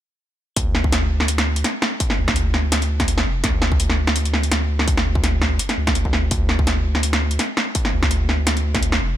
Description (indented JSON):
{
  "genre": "half-time drum and bass",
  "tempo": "167 BPM",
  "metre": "4/4",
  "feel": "swing 55% on 16ths, half-time",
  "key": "D minor",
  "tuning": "A4 = 440 Hz",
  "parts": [
    { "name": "saturated sub bass", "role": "bass", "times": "0.6-9.2 s", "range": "F1 to D2", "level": "-20 LUFS", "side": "equal", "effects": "none" },
    { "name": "drum and bass drum kit", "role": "drums", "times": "0.6-9.0 s", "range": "hi-hat, snare drum", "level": "-21 LUFS", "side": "equal", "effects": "none" },
    { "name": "electronic kick drum", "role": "drums", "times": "0.6-8.8 s", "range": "none", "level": "-22 LUFS", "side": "equal", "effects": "distortion" }
  ],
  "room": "little or no reverb",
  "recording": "none",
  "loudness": "-17 LUFS",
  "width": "side -12 dB against mid",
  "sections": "0.6-9.2 A section",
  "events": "none",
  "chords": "none",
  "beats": "| 0.57 0.93 1.29 1.65 | 2.00 2.36 2.72 3.08 | 3.44 3.80 4.16 4.52 | 4.88 5.24 5.60 5.96 | 6.32 6.67 7.03 7.39 | 7.75 8.11 8.47 8.83"
}